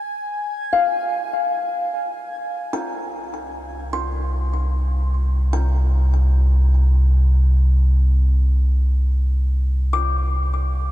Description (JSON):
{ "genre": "ambient", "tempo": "75 BPM", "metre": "3/4", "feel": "straight", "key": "unclear", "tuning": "A4 = 440 Hz", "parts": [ { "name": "backwards swelling texture", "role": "texture", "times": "0.0-2.4 s", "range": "Ab5", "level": "-30 LUFS", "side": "equal", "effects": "built-in reverb" }, { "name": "kalimba", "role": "arpeggios", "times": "0.7-10.9 s", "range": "F5 to D6", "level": "-25 LUFS", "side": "left 3 dB", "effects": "ping-pong delay" }, { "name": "deep rumbling drone", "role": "bass", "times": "3.8-10.9 s", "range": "C2", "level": "-16 LUFS", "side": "equal", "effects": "built-in reverb" } ], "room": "light reverb, small room ambience", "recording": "dark, warm production", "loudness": "-17 LUFS", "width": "side -14 dB against mid", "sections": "0.0-2.3 A section; 2.3-10.9 B section", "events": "none", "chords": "0.0 Fm; 2.3 N.C." }